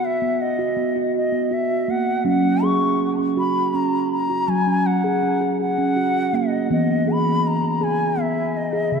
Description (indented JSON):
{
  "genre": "world meditative, meditative tuned percussion",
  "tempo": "54 BPM (dotted quarters)",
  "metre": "6/8",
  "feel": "straight",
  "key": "unclear",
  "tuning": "A4 = 440 Hz",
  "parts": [
    { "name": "bright bansuri", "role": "melody", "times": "0.0-9.0 s", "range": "D#5 to C#6", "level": "-23 LUFS", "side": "left 1 dB", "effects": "tape echo" },
    { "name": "steel tongue drum", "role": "arpeggios", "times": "0.0-9.0 s", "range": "C#3 to G#4", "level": "-20 LUFS", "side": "right 1 dB", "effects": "tape echo" }
  ],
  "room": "wet church reverb, RT60 3.5 s",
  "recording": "dark, warm production",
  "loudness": "-18 LUFS",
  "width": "side -5 dB against mid",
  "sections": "0.0-9.0 A section",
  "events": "none",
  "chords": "0.0 B; 2.3 F#5; 6.7 E"
}